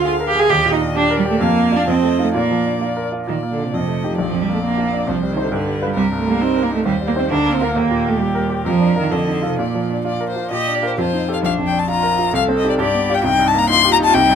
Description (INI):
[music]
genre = quick classical-period movement for piano trio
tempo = 133 BPM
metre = 2/4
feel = straight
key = Bb major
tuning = A4 = 442 Hz
[part]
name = rich violin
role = melody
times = 0.0-14.3 s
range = G4 to C6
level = -21 LUFS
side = left 7 dB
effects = none
[part]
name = rich cello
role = second line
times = 0.0-14.3 s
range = Bb2 to A4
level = -19 LUFS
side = right 4 dB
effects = none
[part]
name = bright concert grand piano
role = accompaniment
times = 0.0-14.3 s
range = Bb1 to C5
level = -20 LUFS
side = equal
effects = none
[sound]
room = little or no reverb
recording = close, detailed microphones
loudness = -15 LUFS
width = side -8 dB against mid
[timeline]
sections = 0.0-3.3 A section; 3.3-10.5 B section; 10.5-14.3 B section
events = none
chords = 0.0 Bb7/D; 0.5 Ebmaj7; 1.4 Bb/F; 1.9 F7; 2.3 Bb; 3.7 F9; 4.2 Bb; 5.1 Cm; 5.5 G7; 6.0 Cm7; 6.9 Cm/Eb; 7.3 Bb/D; 7.8 Eb; 8.7 Bb/F; 9.1 F7; 9.6 Bb; 11.0 F9; 11.4 Bb; 12.3 Cm; 12.8 G7; 13.2 Cm7